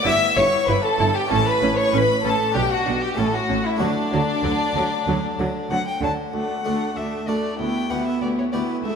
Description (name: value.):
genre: classical, baroque-style concerto movement with solo episodes.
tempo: 96 BPM.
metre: 4/4.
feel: straight.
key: D major.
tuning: A4 = 440 Hz.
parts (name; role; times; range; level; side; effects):
clear chamber violin section; melody; 0.0-9.0 s; G4 to E6; -28 LUFS; left 6 dB; none.
rich chamber violin section; second line; 0.0-9.0 s; D4 to E5; -25 LUFS; left 1 dB; none.
clear symphonic viola section; accompaniment; 0.0-9.0 s; F#3 to E4; -28 LUFS; equal; none.
harpsichord; accompaniment; 0.0-9.0 s; C#2 to A4; -27 LUFS; equal; none.
rich violin; melody; 0.1-9.0 s; D4 to A5; -25 LUFS; left 2 dB; none.
rich chamber double bass section; bass; 0.1-6.1 s; G1 to D2; -29 LUFS; right 5 dB; none.
rich symphonic cello section; bass; 0.1-8.9 s; C#2 to D3; -29 LUFS; right 5 dB; none.
room: wet concert hall reverb, RT60 1.8 s.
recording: none.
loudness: -19 LUFS.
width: side -6 dB against mid.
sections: 0.0-6.3 A section; 6.3-9.0 B section.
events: none.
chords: 0.1 Em/G; 1.3 A; 2.5 G/B; 3.2 A; 3.8 D; 7.6 Em7/D.